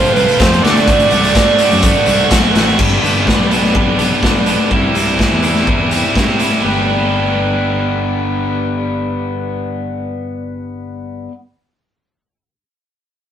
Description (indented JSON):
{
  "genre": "indie rock",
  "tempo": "125 BPM",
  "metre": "4/4",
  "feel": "straight",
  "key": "G major",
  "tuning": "A4 = 440 Hz",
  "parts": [
    { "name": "overdriven synth lead", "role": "melody", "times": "0.0-2.3 s", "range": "B4 to D5", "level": "-14 LUFS", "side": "right 4 dB", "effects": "distortion" },
    { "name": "biting overdriven guitar", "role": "riff", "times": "0.0-11.3 s", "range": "G3 to G4", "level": "-17 LUFS", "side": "right 4 dB", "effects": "none" },
    { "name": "overdriven electric guitar", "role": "riff", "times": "0.0-11.3 s", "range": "F2 to B4", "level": "-20 LUFS", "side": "left 5 dB", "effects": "none" },
    { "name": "raw garage drum kit", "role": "drums", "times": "0.0-6.5 s", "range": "crash cymbal, hi-hat, kick drum, snare drum", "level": "-15 LUFS", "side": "left 1 dB", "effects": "none" },
    { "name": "growling fingered electric bass", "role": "bass", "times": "0.2-11.3 s", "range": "G1 to C3", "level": "-20 LUFS", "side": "equal", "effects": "overdrive" }
  ],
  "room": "moderate small room reverb, RT60 0.5 s",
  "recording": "rough rehearsal-room recording, warm saturation",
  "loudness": "-11 LUFS",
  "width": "side -9 dB against mid",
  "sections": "0.0-2.8 A section; 2.8-6.6 B section; 6.6-10.5 C section",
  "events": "none",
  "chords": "0.0 F; 0.6 D7; 2.8 G; 4.7 C; 6.6 G"
}